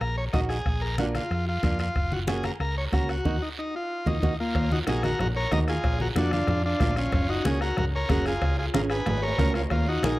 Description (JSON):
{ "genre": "latin, cumbia", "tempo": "186 BPM", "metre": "4/4", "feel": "straight", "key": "Eb minor", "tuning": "A4 = 439 Hz", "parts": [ { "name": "overdriven combo organ", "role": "melody", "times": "0.0-10.2 s", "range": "Bb3 to Eb5", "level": "-28 LUFS", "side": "left 1 dB", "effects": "spring reverb" }, { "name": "hollow-body short-scale fingered electric bass", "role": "bass", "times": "0.0-10.2 s", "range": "Gb1 to F2", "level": "-28 LUFS", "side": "equal", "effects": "none" }, { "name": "bombo", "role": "percussion", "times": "0.0-10.2 s", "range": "none", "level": "-29 LUFS", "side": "equal", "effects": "none" }, { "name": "congas", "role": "percussion", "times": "0.0-10.2 s", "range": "none", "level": "-32 LUFS", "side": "left 1 dB", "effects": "none" }, { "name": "guiro", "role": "percussion", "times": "0.0-10.2 s", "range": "none", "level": "-40 LUFS", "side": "right 4 dB", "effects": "none" }, { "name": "flamenco guitar", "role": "accompaniment", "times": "0.3-10.2 s", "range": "Bb3 to Bb4", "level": "-29 LUFS", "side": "right 3 dB", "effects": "none" }, { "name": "cowbell and timbales", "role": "percussion", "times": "4.6-10.2 s", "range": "none", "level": "-36 LUFS", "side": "right 5 dB", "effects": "none" } ], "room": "little or no reverb", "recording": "dry, close 1970s-style studio recording", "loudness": "-23 LUFS", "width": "side -18 dB against mid", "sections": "0.0-4.5 A section; 4.5-10.2 B section", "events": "band accent 3.3-4.5; drum fill 3.7-4.5, 8.7-9.7", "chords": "0.0 Ebm; 0.7 Bb; 2.0 Gb; 3.3 Ebm; 5.8 Bb; 7.1 Gb; 8.4 Db" }